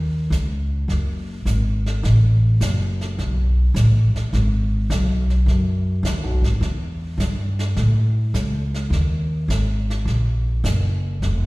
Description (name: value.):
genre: jazz piano trio.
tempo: 104 BPM.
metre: 4/4.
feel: swing 69% on 8ths.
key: unclear.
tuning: A4 = 441 Hz.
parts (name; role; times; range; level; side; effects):
upright bass; bass; 0.0-11.5 s; F1 to A2; -18 LUFS; equal; none.
jazz brush drum kit; drums; 0.3-11.5 s; brushed snare drum, hi-hat, snare drum; -32 LUFS; right 2 dB; slapback echo.
room: little or no reverb.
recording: live gig heard through the venue's PA, recital hall reverb.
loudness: -18 LUFS.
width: side -22 dB against mid.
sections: 0.0-11.5 A section.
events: none.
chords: none.